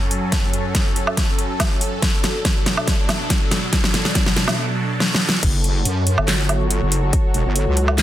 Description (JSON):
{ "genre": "heavy wobble dubstep", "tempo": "141 BPM", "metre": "4/4", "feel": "half-time", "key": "F# phrygian", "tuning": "A4 = 439 Hz", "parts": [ { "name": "supersaw pad", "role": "sustained chords", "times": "0.0-8.0 s", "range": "F#2 to C#5", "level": "-24 LUFS", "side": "equal", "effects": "phaser, sidechain pumping, low-pass filter" }, { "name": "dubstep drum kit", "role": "drums", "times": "0.1-8.0 s", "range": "crash cymbal, handclaps, hi-hat, snare drum, woodblock", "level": "-20 LUFS", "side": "equal", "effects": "none" }, { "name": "electronic kick drum", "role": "drums", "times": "0.3-7.2 s", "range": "none", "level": "-20 LUFS", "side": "equal", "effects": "none" }, { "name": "wobble bass", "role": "bass", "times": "5.4-8.0 s", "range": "E1 to F#2", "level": "-19 LUFS", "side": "equal", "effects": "chorus, overdrive" } ], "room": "light reverb", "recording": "dense, heavily limited modern master", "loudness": "-17 LUFS", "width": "side -13 dB against mid", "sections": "0.0-5.4 A section; 5.4-8.0 B section", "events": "build-up 0.0-5.4; drum fill 0.0-4.6, 5.0-5.4; drop 5.4-8.0", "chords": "0.0 F#m; 2.0 Bm7; 5.4 F#m" }